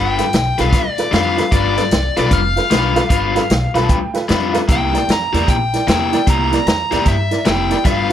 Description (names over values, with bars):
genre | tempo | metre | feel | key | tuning
electric blues shuffle | 152 BPM | 4/4 | swing 64% on 8ths | unclear | A4 = 441 Hz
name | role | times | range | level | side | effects
dark smooth lead guitar | melody | 0.0-8.1 s | D5 to Bb5 | -20 LUFS | left 2 dB | overdrive
overdriven electric guitar | riff | 0.0-8.1 s | C3 to B4 | -19 LUFS | left 5 dB | none
upright bass | bass | 0.0-8.1 s | F1 to G2 | -21 LUFS | right 1 dB | none
honky-tonk upright piano | accompaniment | 0.2-8.1 s | E4 to B5 | -22 LUFS | right 5 dB | none
vintage drum kit | drums | 0.2-8.1 s | hi-hat, kick drum, snare drum | -18 LUFS | equal | none
room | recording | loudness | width
light reverb | none | -13 LUFS | side -10 dB against mid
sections
0.0-8.1 A section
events
honky-tonk piano fill 3.5-4.7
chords
0.0 G7; 4.7 C7